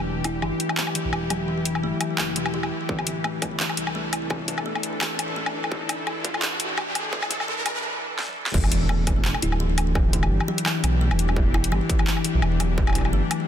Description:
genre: half-time drum and bass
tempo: 170 BPM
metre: 4/4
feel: swing 55% on 16ths, half-time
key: E minor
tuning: A4 = 437 Hz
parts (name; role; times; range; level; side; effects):
- bowed-like drone; sustained chords; 0.0-13.5 s; E3 to A4; -30 LUFS; left 2 dB; built-in reverb, sidechain pumping
- dark detuned saw bass; bass; 0.0-13.2 s; D1 to C2; -26 LUFS; equal; none
- kalimba; arpeggios; 0.2-13.3 s; E3 to E4; -30 LUFS; left 1 dB; low-pass filter, ping-pong delay
- drum and bass drum kit; drums; 0.2-13.4 s; crash cymbal, handclaps, hi-hat, snare drum, toms, woodblock; -27 LUFS; left 1 dB; overdrive
- electronic kick drum; drums; 2.9-13.0 s; none; -25 LUFS; equal; distortion
- riser and impact; sound effects; 4.5-10.0 s; none; -31 LUFS; right 1 dB; none
room: light reverb, digital ambience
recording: dense, heavily limited modern master, high-pass filter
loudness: -22 LUFS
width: side -10 dB against mid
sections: 0.0-8.5 A section; 8.5-13.5 B section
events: build-up 0.0-8.5; filter sweep on kalimba 0.0-8.5; filter sweep 0.0-8.5; riser 4.5-7.8; break 7.8-8.5; drum fill 8.2-8.5; drop 8.5-13.5; impact 8.5-10.0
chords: 0.0 Em; 2.9 Dsus2; 8.5 Em7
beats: | 0.07 0.43 0.78 1.13 | 1.48 1.84 2.19 2.54 | 2.90 3.25 3.60 3.96 | 4.31 4.66 5.01 5.37 | 5.72 6.07 6.43 6.78 | 7.13 7.48 7.84 8.19 | 8.54 8.90 9.25 9.60 | 9.96 10.31 10.66 11.01 | 11.37 11.72 12.07 12.43 | 12.78 13.13

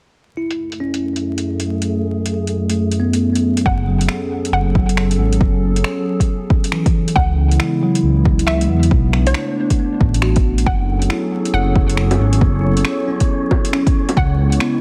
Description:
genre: future garage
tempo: 137 BPM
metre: 4/4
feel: swing 63% on 16ths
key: F# minor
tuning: A4 = 440 Hz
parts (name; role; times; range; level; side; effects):
- warbly tape-like pad; sustained chords; 0.2-14.8 s; F#2 to A4; -24 LUFS; equal; chorus, built-in reverb, sidechain pumping
- wind-like tuned noise texture; texture; 0.7-3.7, 11.5-14.8 s; A3 to C#5; -32 LUFS; equal; built-in reverb
- bell-like tine electric piano; accompaniment; 0.4-14.8 s; E3 to F#4; -25 LUFS; equal; phaser, sidechain pumping, tape echo
- deep house drum kit; drums; 0.5-14.7 s; bongos, finger snaps, hi-hat; -26 LUFS; equal; overdrive, low-pass filter on hats, studio ambience, soft clipping on snare, low-pass filter on snare, low-pass filter on perc
- hollow square pluck; melody; 3.7-14.6 s; C#5 to F#5; -27 LUFS; equal; chorus, tape echo
- dark detuned saw bass; bass; 3.7-14.6 s; F#1 to E2; -19 LUFS; equal; sidechain pumping
- electronic kick drum; drums; 3.7-14.3 s; none; -18 LUFS; equal; overdrive, studio ambience
room: light reverb, digital ambience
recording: dense, heavily limited modern master, vinyl crackle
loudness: -17 LUFS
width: mono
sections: 0.2-3.7 A section; 3.7-14.8 B section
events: filter sweep on ambient pad 0.2-3.7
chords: 0.2 F#madd9; 7.2 C#m7; 8.9 Bm7; 10.7 F#madd9; 14.2 C#m7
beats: | 0.15 0.59 1.03 1.47 | 1.90 2.34 2.78 3.22 | 3.66 4.09 4.53 4.97 | 5.41 5.84 6.28 6.72 | 7.16 7.60 8.04 8.47 | 8.91 9.35 9.79 10.22 | 10.66 11.10 11.54 11.98 | 12.41 12.85 13.29 13.73 | 14.17 14.61

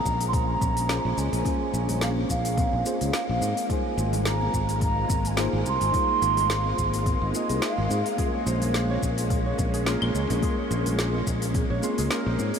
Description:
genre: sunset chillout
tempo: 107 BPM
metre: 4/4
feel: swing 55% on 16ths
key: Bb minor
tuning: A4 = 442 Hz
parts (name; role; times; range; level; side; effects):
- mellow hollow baroque flute; melody; 0.0-8.1 s; F5 to C6; -29 LUFS; right 3 dB; analog delay
- mellow FM electric piano; accompaniment; 0.0-12.4 s; Bb3 to C6; -32 LUFS; left 2 dB; chorus, auto-pan, low-pass filter, tape echo
- soft string machine; sustained chords; 0.0-12.6 s; Ab3 to F4; -31 LUFS; equal; ensemble chorus
- Celtic harp; arpeggios; 0.0-1.2, 8.2-12.6 s; Ab4 to Eb5; -36 LUFS; right 1 dB; tape echo
- fretless electric bass; bass; 0.1-12.5 s; Ab1 to Ab2; -27 LUFS; equal; none
- deep house drum kit; drums; 0.1-12.6 s; claves, hi-hat, shaker, snare drum; -33 LUFS; equal; none
- electronic kick drum; drums; 0.1-11.7 s; none; -28 LUFS; equal; overdrive
- congas; percussion; 0.6-12.5 s; none; -38 LUFS; left 3 dB; none
room: wet huge ambient reverb, RT60 8.1 s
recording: dreamy mix soaked in reverb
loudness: -22 LUFS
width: side -7 dB against mid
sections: 0.0-12.6 A section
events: filter sweep on FM electric piano 0.0-12.6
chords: 0.0 Bbm9; 3.4 Ab69; 8.2 Bbm9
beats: 0.33 0.89 | 1.46 2.02 2.58 3.14 | 3.70 4.26 4.82 5.38 | 5.94 6.50 7.06 7.62 | 8.18 8.74 9.30 9.87 | 10.43 10.99 11.55 12.11

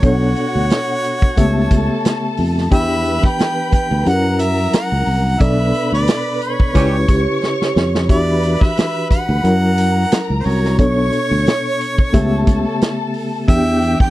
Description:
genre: lush 1970s-style soul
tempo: 89 BPM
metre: 4/4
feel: swing 54% on 16ths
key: E dorian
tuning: A4 = 440 Hz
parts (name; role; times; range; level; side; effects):
- warm harmonica; melody; 0.0-14.1 s; C5 to G5; -22 LUFS; right 1 dB; none
- warm studio string section; second line; 0.0-14.1 s; F#4 to C#6; -25 LUFS; right 1 dB; none
- mellow reed electric piano; accompaniment; 0.0-14.1 s; B2 to G5; -20 LUFS; left 1 dB; tremolo
- fingered electric bass; bass; 0.0-14.0 s; B1 to F#2; -17 LUFS; equal; none
- vintage drum kit; drums; 0.0-14.1 s; hi-hat, kick drum, snare drum; -15 LUFS; equal; none
- vibraphone with soft mallets; texture; 3.4-11.1 s; F#4 to B4; -26 LUFS; right 2 dB; none
- clear horn section; stabs; 6.7-7.0 s; E3 to G4; -21 LUFS; right 4 dB; none
room: little or no reverb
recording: dry, close 1970s-style studio recording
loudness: -14 LUFS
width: side -16 dB against mid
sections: 0.0-14.1 A section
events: band accent 5.4-8.1; drum fill 7.4-8.1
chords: 0.0 Bm9; 1.4 A7/C#; 2.7 Em7; 4.1 F#7; 5.4 Bm7; 6.8 C#m7b5; 8.1 Em7; 9.4 F#7; 10.8 Bm9; 12.1 A7/C#; 13.5 Em7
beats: | 0.03 0.70 1.37 2.04 | 2.72 3.39 4.06 4.73 | 5.41 6.08 6.75 7.42 | 8.10 8.77 9.44 10.12 | 10.79 11.46 12.13 12.81 | 13.48

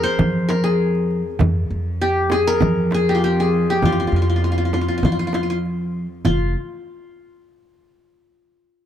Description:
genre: Arabic maqam ensemble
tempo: 99 BPM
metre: 4/4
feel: straight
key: F minor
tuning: A4 = 439 Hz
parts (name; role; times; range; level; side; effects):
- qanun; melody; 0.0-6.5 s; F4 to C5; -21 LUFS; left 2 dB; none
- upright bass; bass; 0.0-6.5 s; F1 to F3; -21 LUFS; equal; none
- rich chamber cello section; drone; 0.0-6.3 s; F2; -29 LUFS; right 1 dB; none
- darbuka; percussion; 0.2-6.5 s; none; -23 LUFS; equal; none
- frame drum; percussion; 0.2-6.5 s; none; -25 LUFS; right 3 dB; none
room: light reverb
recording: none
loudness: -17 LUFS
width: side -10 dB against mid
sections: 0.0-6.2 A section; 6.2-8.7 B section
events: none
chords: none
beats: 0.19 0.80 | 1.40 2.01 2.62 3.22 | 3.83 4.43 5.04 5.64 | 6.25

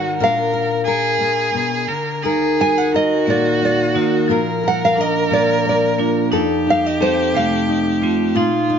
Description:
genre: acoustic folk-pop ballad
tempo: 59 BPM (dotted quarters)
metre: 6/8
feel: straight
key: unclear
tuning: A4 = 436 Hz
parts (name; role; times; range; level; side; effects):
- nylon-string guitar; melody; 0.0-8.8 s; C5 to Ab5; -19 LUFS; right 2 dB; none
- warm violin; second line; 0.0-8.8 s; F4 to Bb4; -22 LUFS; right 2 dB; none
- nylon-string guitar; accompaniment; 0.0-8.8 s; Eb2 to Cb5; -21 LUFS; left 6 dB; none
- vibraphone with hard mallets; arpeggios; 2.2-8.8 s; F3 to Gb4; -19 LUFS; right 3 dB; none
room: moderate plate reverb, RT60 3.3 s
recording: nothing above 7.5 kHz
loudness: -15 LUFS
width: side -7 dB against mid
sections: 0.0-8.8 A section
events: none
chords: 0.2 Bb; 2.2 Ebm; 4.3 Bb; 6.3 F7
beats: | 0.18 1.21 | 2.23 3.26 | 4.29 5.30 | 6.32 7.34 | 8.36

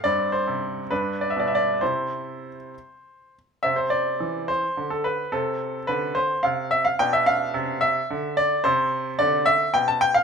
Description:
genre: classical-period piano sonatina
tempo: 65-73 BPM (dotted quarters)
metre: 6/8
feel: rubato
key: C major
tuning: A4 = 442 Hz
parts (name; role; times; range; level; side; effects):
- bright baby grand piano; solo; 0.0-10.2 s; G2 to A5; -21 LUFS; equal; none
room: moderate large studio reverb, RT60 0.9 s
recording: minimal, uncompressed stereo recording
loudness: -21 LUFS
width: side -6 dB against mid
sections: 0.0-3.6 A section; 3.6-10.2 A section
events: none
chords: 0.0 C5/G; 0.9 G; 1.8 C; 5.3 Cmaj7sus2; 7.0 Dm13/B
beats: | 0.05 0.91 | 1.81 2.73 | 3.63 4.49 | 5.33 6.16 | 6.99 7.82 | 8.64 9.46

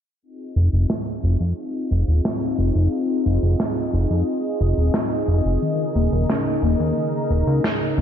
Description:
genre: synthwave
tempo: 89 BPM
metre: 4/4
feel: straight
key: F minor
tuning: A4 = 441 Hz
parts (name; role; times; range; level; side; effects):
- warm analog pad; sustained chords; 0.2-8.0 s; Db3 to Eb5; -24 LUFS; left 1 dB; chorus
- fat analog bass; bass; 0.6-8.0 s; Eb1 to F2; -18 LUFS; equal; none
- snare drum; drums; 0.9-7.8 s; none; -26 LUFS; right 1 dB; slapback echo
- soft round pluck; arpeggios; 5.6-8.0 s; Eb3 to Db4; -25 LUFS; left 6 dB; lush chorus, cassette tape, ping-pong delay, slapback echo
room: moderate concert hall reverb, RT60 2.1 s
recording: big arena sound, low-pass filter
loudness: -18 LUFS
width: side -9 dB against mid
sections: 0.2-8.0 A section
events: filter sweep on analog synth bass 0.2-8.0; filter sweep on analog synth pad 0.2-8.0; filter sweep 0.2-8.0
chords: 0.2 Fm7; 5.6 Eb7sus4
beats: | 0.23 0.90 1.57 2.25 | 2.92 3.60 4.27 4.95 | 5.62 6.29 6.97 7.64

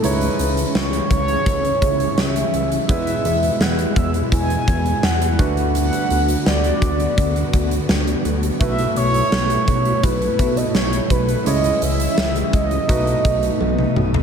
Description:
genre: 1980s-style pop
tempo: 84 BPM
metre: 4/4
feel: straight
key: unclear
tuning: A4 = 440 Hz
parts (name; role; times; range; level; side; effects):
- mellow horn-like synth lead; melody; 0.0-13.9 s; B4 to G#5; -22 LUFS; right 1 dB; chorus, analog delay, shimmer reverb
- clear baby grand piano; accompaniment; 0.0-14.2 s; G#3 to C#5; -26 LUFS; right 4 dB; shimmer reverb
- string machine, violas; sustained chords; 0.0-14.2 s; B2 to F#4; -25 LUFS; equal; ensemble chorus, shimmer reverb
- chorused synth bass; bass; 0.0-14.2 s; B1 to E2; -22 LUFS; equal; none
- huge arena drum kit; drums; 0.0-14.2 s; hi-hat, kick drum, snare drum, toms; -21 LUFS; equal; none
room: moderate plate reverb, RT60 2.2 s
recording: dreamy mix soaked in reverb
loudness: -16 LUFS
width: side -7 dB against mid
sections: 0.0-14.2 A section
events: drum fill 13.6-14.2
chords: 0.0 C#madd9; 2.9 E; 5.4 D6; 8.6 B7sus4; 11.5 C#m; 12.9 B7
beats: | 0.03 0.75 1.46 2.18 | 2.89 3.61 4.32 5.03 | 5.75 6.46 7.18 7.89 | 8.61 9.32 10.03 10.75 | 11.46 12.18 12.89 13.61

